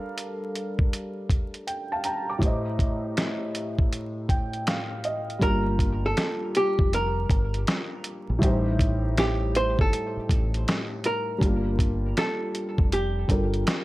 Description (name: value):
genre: lo-fi hip hop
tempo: 80 BPM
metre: 4/4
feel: swing 66% on 16ths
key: G minor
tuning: A4 = 440 Hz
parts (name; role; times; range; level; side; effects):
- felt-muted upright piano; accompaniment; 0.0-13.8 s; A2 to D6; -30 LUFS; equal; cassette tape, low-pass filter
- dusty soul sampler-style drum kit; drums; 0.2-13.8 s; finger snaps, hi-hat, kick drum, snare drum; -24 LUFS; equal; none
- archtop guitar, miked and amplified; melody; 5.4-13.8 s; G4 to C5; -28 LUFS; right 1 dB; low-pass filter, tape echo
- deep dub fingered electric bass; bass; 5.4-13.6 s; F1 to Bb1; -27 LUFS; equal; none
room: digital ambience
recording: vinyl crackle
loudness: -23 LUFS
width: side -18 dB against mid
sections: 0.0-5.4 A section; 5.4-13.8 B section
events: felt piano fill 3.9-5.4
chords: 0.0 Gm7; 2.4 Am7b5; 5.4 Gm7; 8.4 Am7b5; 11.4 Gm7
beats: 0.17 0.92 1.67 | 2.42 3.17 3.92 4.67 | 5.42 6.17 6.92 7.67 | 8.42 9.17 9.92 10.67 | 11.42 12.17 12.92 13.67